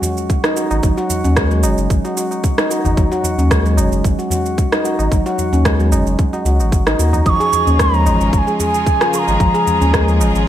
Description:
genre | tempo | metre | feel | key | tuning
organic downtempo | 112 BPM | 4/4 | swing 54% on 16ths | unclear | A4 = 440 Hz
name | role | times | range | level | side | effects
handpan | arpeggios | 0.0-10.2 s | F3 to Ab4 | -18 LUFS | equal | digital delay
electronic shaker and rim click | drums | 0.0-10.5 s | none | -21 LUFS | right 1 dB | overdrive, gated reverb
tabla | percussion | 0.0-10.3 s | none | -25 LUFS | equal | none
electronic kick drum | drums | 0.3-10.1 s | none | -16 LUFS | equal | none
warm sub bass | bass | 0.7-10.4 s | Gb1 to Eb2 | -16 LUFS | equal | sidechain pumping
reedy bansuri | melody | 7.3-10.2 s | Ab5 to Eb6 | -17 LUFS | right 2 dB | ping-pong delay
clear symphonic string section | sustained chords | 7.3-10.5 s | Db3 to Ab4 | -22 LUFS | left 1 dB | sidechain pumping
room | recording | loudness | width
light reverb, small room ambience | bright 1980s-style digital production | -13 LUFS | side -11 dB against mid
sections
0.0-10.5 A section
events
none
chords
0.0 Ab7(no3); 7.3 Db/Ab

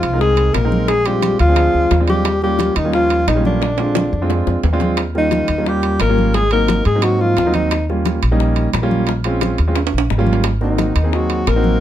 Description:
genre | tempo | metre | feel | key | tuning
Afro-Cuban jazz | 176 BPM | 4/4 | straight | unclear | A4 = 439 Hz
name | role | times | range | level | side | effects
mellow alto saxophone | melody | 0.0-7.9, 10.6-11.8 s | D4 to Bb4 | -18 LUFS | equal | plate reverb
mellow trombone | second line | 0.0-7.9, 10.6-11.8 s | D3 to Bb3 | -24 LUFS | left 7 dB | none
upright bass | bass | 0.0-11.8 s | Ab1 to Ab2 | -18 LUFS | equal | none
timbales | percussion | 0.0-11.6 s | none | -25 LUFS | right 9 dB | none
warm concert grand piano | accompaniment | 0.1-11.8 s | Gb3 to Bb4 | -21 LUFS | right 2 dB | none
bongos | percussion | 0.2-11.8 s | none | -26 LUFS | left 9 dB | none
congas | percussion | 0.2-11.8 s | none | -25 LUFS | right 1 dB | none
room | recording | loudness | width
light reverb | dark, warm production | -14 LUFS | side -12 dB against mid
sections
0.0-5.0 A section; 5.0-11.8 A section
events
drum fill 3.6-5.0, 9.8-10.4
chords
0.0 Fm7; 0.9 Bb7; 2.3 Eb7; 3.6 Bb7; 5.0 Eb7; 6.3 Ab7; 7.7 Eb7; 9.1 Bbm7; 9.8 Eb7; 10.4 Ab7

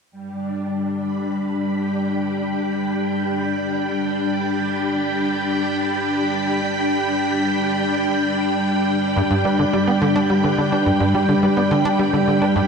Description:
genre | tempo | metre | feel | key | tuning
ambient, sequencer-driven space music | 106 BPM | 4/4 | straight | G major | A4 = 440 Hz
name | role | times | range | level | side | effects
string machine, full ensemble | sustained chords | 0.1-12.7 s | G3 to B5 | -19 LUFS | left 1 dB | ensemble chorus, shimmer reverb
bubbling stepped-filter texture | texture | 0.1-12.7 s | G5 | -29 LUFS | right 7 dB | chorus, built-in reverb, shimmer reverb
concert harp | arpeggios | 9.2-12.7 s | G4 to B5 | -26 LUFS | left 2 dB | auto-pan, tape echo, shimmer reverb
tight sequencer bass | riff | 9.2-12.6 s | G2 to D4 | -20 LUFS | right 1 dB | lush chorus, tape echo
room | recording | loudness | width
wet cathedral reverb, RT60 6.4 s | in a vast, echoing space, cassette tape | -18 LUFS | side -5 dB against mid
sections
0.1-9.2 A section; 9.2-12.7 B section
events
fade-in on synth texture 0.1-9.2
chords
0.1 G

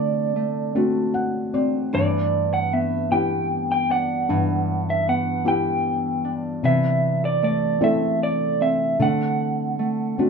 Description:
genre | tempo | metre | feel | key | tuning
acoustic folk-pop ballad | 51 BPM (dotted quarters) | 6/8 | straight | G major | A4 = 442 Hz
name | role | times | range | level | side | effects
electric guitar through a small old amp | melody | 0.0-10.3 s | D5 to G5 | -23 LUFS | right 3 dB | tremolo
felt-muted upright piano | accompaniment | 0.0-10.3 s | G2 to F#5 | -24 LUFS | left 2 dB | none
Celtic harp | arpeggios | 0.0-10.3 s | E3 to D4 | -25 LUFS | equal | none
room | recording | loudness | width
wet small room reverb, RT60 0.5 s | minimal, uncompressed stereo recording | -19 LUFS | side -5 dB against mid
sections
0.0-10.3 A section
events
none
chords
0.0 D7; 1.9 G6; 6.6 C6; 9.0 D7

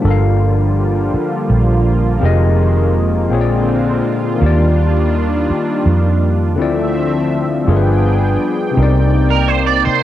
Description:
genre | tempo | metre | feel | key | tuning
slow six-eight R&B | 55 BPM (dotted quarters) | 6/8 | straight | G minor | A4 = 440 Hz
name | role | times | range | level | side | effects
overdriven tine electric piano | accompaniment | 0.0-10.0 s | Bb2 to F5 | -18 LUFS | left 6 dB | cassette tape
warm analog pad | sustained chords | 0.0-10.0 s | D3 to G5 | -19 LUFS | right 2 dB | chorus, cassette tape
vintage muted fingered electric bass | bass | 0.0-9.9 s | F1 to F2 | -14 LUFS | right 1 dB | none
electric guitar at the edge of break-up | second line | 9.3-10.0 s | Bb4 to D5 | -14 LUFS | right 11 dB | ensemble chorus, cassette tape
room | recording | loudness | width
light reverb | home recording on cassette | -12 LUFS | side -13 dB against mid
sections
0.0-10.0 A section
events
none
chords
0.0 Gm9; 2.2 Fm11; 3.3 Bb9; 4.4 Ebmaj9; 6.6 Dm9; 7.7 G7b9; 8.8 Cm9

